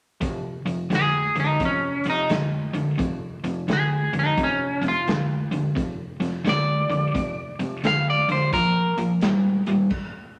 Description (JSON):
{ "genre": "electric blues shuffle", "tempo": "87 BPM", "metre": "4/4", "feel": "swing 64% on 8ths", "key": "unclear", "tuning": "A4 = 440 Hz", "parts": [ { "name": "biting overdriven guitar", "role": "riff", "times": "0.2-9.9 s", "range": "F2 to G3", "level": "-26 LUFS", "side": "equal", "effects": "none" }, { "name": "raw garage drum kit", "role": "drums", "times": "0.2-10.1 s", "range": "crash cymbal, hi-hat, kick drum, snare drum", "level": "-32 LUFS", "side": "equal", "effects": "none" }, { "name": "electric guitar at the edge of break-up", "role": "melody", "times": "0.9-9.0 s", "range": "Db4 to F5", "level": "-26 LUFS", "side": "equal", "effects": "spring reverb" } ], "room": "moderate studio reverb, RT60 0.6 s", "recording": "none", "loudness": "-23 LUFS", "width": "mono", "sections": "0.2-10.4 A section", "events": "stop 9.9-10.4", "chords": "0.2 F5; 8.5 Bb5" }